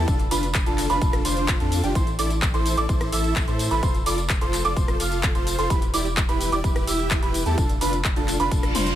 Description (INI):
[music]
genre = EDM, festival progressive house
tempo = 128 BPM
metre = 4/4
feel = straight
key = unclear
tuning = A4 = 439 Hz
[part]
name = dark grand piano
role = arpeggios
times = 0.0-9.0 s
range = G5 to F6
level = -28 LUFS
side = right 3 dB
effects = sidechain pumping, digital delay
[part]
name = dense compressed supersaw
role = riff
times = 0.0-9.0 s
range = D4 to F5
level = -26 LUFS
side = equal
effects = sidechain pumping, digital delay
[part]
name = saturated sub bass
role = bass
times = 0.0-9.0 s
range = E1 to A2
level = -27 LUFS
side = equal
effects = sidechain pumping
[part]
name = big-room dance drum kit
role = drums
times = 0.1-9.0 s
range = handclaps, hi-hat, rim click, tambourine, toms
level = -28 LUFS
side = left 1 dB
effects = overdrive
[part]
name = electronic kick drum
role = drums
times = 0.1-8.6 s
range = none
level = -23 LUFS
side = equal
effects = none
[part]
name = reverse cymbal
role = sound effects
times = 8.6-9.0 s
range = none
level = -29 LUFS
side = right 2 dB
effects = none
[sound]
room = light reverb, digital ambience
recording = none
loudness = -20 LUFS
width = side -12 dB against mid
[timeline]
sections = 0.0-9.0 A section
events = reverse cymbal 8.6-9.0; drum fill 8.8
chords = 0.1 Dm/F; 2.0 Am; 3.8 F; 5.7 Em; 7.6 Dm/F